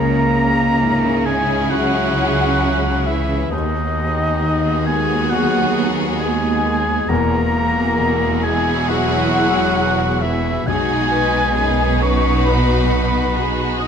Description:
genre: cinematic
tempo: 67 BPM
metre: 4/4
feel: rubato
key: B major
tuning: A4 = 440 Hz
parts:
  - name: warm studio violin section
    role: melody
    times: 0.0-13.9 s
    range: G#4 to B4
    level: -26 LUFS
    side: left 4 dB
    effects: none
  - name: concert flute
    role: second line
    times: 0.0-13.9 s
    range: D#5 to D#6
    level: -26 LUFS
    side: left 1 dB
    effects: none
  - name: warm clarinet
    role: second line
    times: 0.0-13.9 s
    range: D#4 to D#5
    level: -28 LUFS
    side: left 5 dB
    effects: none
  - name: warm oboe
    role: second line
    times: 0.0-13.9 s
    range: D#5 to D#6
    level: -23 LUFS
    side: right 2 dB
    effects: none
  - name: warm studio violin section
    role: second line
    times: 0.0-13.9 s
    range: D#4 to G#4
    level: -28 LUFS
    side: left 4 dB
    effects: none
  - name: felt-muted upright piano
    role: accompaniment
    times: 0.0-13.9 s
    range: B1 to B4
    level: -26 LUFS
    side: left 4 dB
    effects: none
  - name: rich studio viola section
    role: accompaniment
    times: 0.0-13.9 s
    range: B3 to F#4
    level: -26 LUFS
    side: right 4 dB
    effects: none
  - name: mellow French horn section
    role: sustained chords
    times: 0.0-13.9 s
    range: D#3 to D#4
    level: -23 LUFS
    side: left 4 dB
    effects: none
  - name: clear studio double bass section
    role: bass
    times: 0.0-13.9 s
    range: E1 to D#2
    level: -23 LUFS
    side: right 2 dB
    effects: none
  - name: rich studio cello section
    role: bass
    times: 0.0-13.9 s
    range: D#2 to C#3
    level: -23 LUFS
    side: right 4 dB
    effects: none
room: moderate scoring stage reverb, RT60 1.9 s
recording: none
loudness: -15 LUFS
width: side -7 dB against mid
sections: 0.0-13.9 A section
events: none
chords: 0.0 C#m; 3.5 B6/D#; 7.1 Eadd9; 10.7 B6

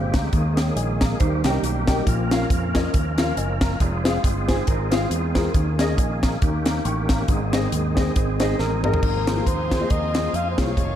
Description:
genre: uptempo gospel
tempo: 138 BPM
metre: 4/4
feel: swing 57% on 8ths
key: Ab major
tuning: A4 = 436 Hz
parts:
  - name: dark grand piano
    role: accompaniment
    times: 0.0-10.8 s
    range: Ab2 to Db6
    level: -26 LUFS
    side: left 3 dB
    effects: ensemble chorus
  - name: bright tonewheel organ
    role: sustained chords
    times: 0.0-11.0 s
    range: D3 to Bb4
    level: -29 LUFS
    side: right 2 dB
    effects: fast rotary speaker, chorus vibrato
  - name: fingered electric bass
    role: bass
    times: 0.0-11.0 s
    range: F1 to F2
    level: -25 LUFS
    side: equal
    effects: none
  - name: tight funk drum kit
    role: drums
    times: 0.1-10.9 s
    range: crash cymbal, hi-hat, kick drum, snare drum, toms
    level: -23 LUFS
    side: equal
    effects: none
  - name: mellow electric guitar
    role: second line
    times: 1.2-5.5, 8.2-9.0 s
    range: Bb3 to C5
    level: -32 LUFS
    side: right 6 dB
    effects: spring reverb, diffuse ambient delay
  - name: trumpet with bucket mute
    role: melody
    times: 8.6-11.0 s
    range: Bb4 to F5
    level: -26 LUFS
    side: left 2 dB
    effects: none
  - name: clear studio string section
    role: sustained chords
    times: 9.0-11.0 s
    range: Eb5 to C#6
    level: -36 LUFS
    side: left 3 dB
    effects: none
room: moderate lush hall reverb, RT60 2.2 s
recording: dreamy mix soaked in reverb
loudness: -19 LUFS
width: side -10 dB against mid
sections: 0.0-9.0 A section; 9.0-11.0 B section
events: drum fill 8.6-9.0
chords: 0.3 Ebsus4; 1.2 Eb; 2.1 Bbm; 3.8 Fm; 5.5 Eb7sus4; 6.4 Eb7; 7.3 Ab; 9.0 Ab69

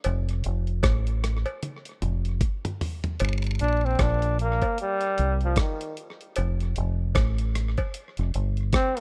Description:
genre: roots reggae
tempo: 76 BPM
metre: 4/4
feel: swing 58% on 16ths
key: unclear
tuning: A4 = 440 Hz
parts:
  - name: dusty soul sampler-style drum kit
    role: drums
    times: 0.0-9.0 s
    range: hi-hat, kick drum, rim click, toms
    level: -30 LUFS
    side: equal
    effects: none
  - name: cowbell and jawbone-type rattle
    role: percussion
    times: 0.0-7.9 s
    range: none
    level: -37 LUFS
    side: equal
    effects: none
  - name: deep dub fingered electric bass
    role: bass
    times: 0.1-8.7 s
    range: F1 to C2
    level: -27 LUFS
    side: equal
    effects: none
  - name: brilliant trombone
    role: melody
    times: 3.6-9.0 s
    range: Eb3 to D4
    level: -29 LUFS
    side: equal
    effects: none
room: studio reverb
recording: rough home demo mix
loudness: -26 LUFS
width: mono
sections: 0.0-3.2 A section; 3.2-9.0 B section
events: drum fill 1.6-3.2; trombone solo 3.2-9.0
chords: 0.0 F; 3.2 Gm; 4.8 Cm; 6.4 F

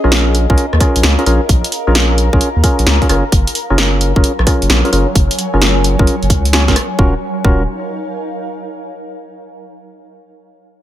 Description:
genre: UK garage, two-step garage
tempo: 131 BPM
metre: 4/4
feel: swing 66% on 16ths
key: Eb minor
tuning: A4 = 444 Hz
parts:
  - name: percussive organ stab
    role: stabs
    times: 0.0-7.6 s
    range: Db4 to Db5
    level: -18 LUFS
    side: equal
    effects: chorus, ping-pong delay
  - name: soft dub sub bass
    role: bass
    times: 0.0-7.7 s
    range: Eb1 to Eb2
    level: -14 LUFS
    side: equal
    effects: sidechain pumping
  - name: punchy analog drum machine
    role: drums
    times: 0.0-6.9 s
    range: hi-hat, rim click, snare drum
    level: -16 LUFS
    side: equal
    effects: none
  - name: granular cloud pad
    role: texture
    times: 0.0-8.8 s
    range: Gb3 to Bb5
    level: -23 LUFS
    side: equal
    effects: built-in reverb, sidechain pumping
  - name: electronic kick drum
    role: drums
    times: 0.5-7.6 s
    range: none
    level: -13 LUFS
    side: equal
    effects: none
room: light reverb, digital ambience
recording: none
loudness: -11 LUFS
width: side -12 dB against mid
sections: 0.0-7.0 A section; 7.0-8.8 B section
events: filter sweep on synth stab 0.0-7.0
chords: 0.0 Bbm7; 3.1 Gbmaj9; 7.0 Ebm9

